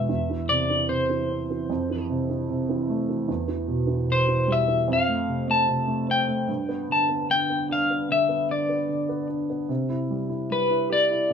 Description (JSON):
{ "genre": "acoustic folk-pop ballad", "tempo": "75 BPM", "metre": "4/4", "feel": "straight", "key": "C major", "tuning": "A4 = 440 Hz", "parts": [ { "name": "electric guitar at the edge of break-up", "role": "melody", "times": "0.0-11.3 s", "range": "B4 to A5", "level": "-23 LUFS", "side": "left 2 dB", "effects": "tremolo" }, { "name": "dark baby grand piano", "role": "accompaniment", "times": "0.0-11.3 s", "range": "E2 to G4", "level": "-25 LUFS", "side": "right 2 dB", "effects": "none" } ], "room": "wet studio reverb, RT60 0.5 s", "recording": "band playing live in one room", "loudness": "-22 LUFS", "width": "side -7 dB against mid", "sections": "0.0-11.3 A section", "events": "none", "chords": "0.1 Cadd9/E; 1.7 Fmaj7; 3.3 Em; 4.9 F; 6.5 G; 9.7 C" }